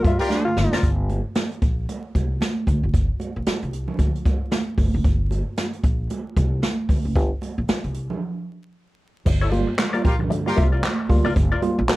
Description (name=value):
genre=funk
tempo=114 BPM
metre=4/4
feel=swing 60% on 16ths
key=G dorian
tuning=A4 = 440 Hz
part: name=breathy alto saxophone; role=melody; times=0.0-0.8 s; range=D4 to G4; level=-24 LUFS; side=left 1 dB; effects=none
part: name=tine electric piano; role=stabs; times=0.0-0.7, 9.3-11.8 s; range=G2 to F4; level=-25 LUFS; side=right 1 dB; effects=overdrive, medium stereo tremolo
part: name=upright bass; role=bass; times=0.0-11.9 s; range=F#1 to G2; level=-24 LUFS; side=equal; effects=none
part: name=jazz brush drum kit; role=drums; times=0.0-12.0 s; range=crash cymbal, handclaps, hi-hat, kick drum, snare drum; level=-22 LUFS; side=equal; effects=none
part: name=congas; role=percussion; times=0.0-12.0 s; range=none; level=-29 LUFS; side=right 3 dB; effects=none
part: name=hollow-body jazz guitar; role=accompaniment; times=0.1-0.9, 9.3-11.9 s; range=F4 to E5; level=-28 LUFS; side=left 5 dB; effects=wah
part: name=clear horn section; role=second line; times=0.2-0.5, 10.0-10.6 s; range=F4 to Bb4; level=-26 LUFS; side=equal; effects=none
room=little or no reverb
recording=vinyl crackle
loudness=-20 LUFS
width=side -18 dB against mid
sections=0.8-9.3 A section; 9.3-12.0 B section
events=band accent 0.0-0.8; drum fill 0.3-0.8; break 8.2-9.3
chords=0.0 Gm7; 0.8 Gm; 9.3 Gm7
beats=0.30 | 0.83 1.36 1.88 2.41 | 2.94 3.46 3.99 4.52 | 5.05 5.57 6.10 6.63 | 7.15 7.68 8.21 8.73 | 9.26 9.79 10.31 10.84 | 11.36 11.89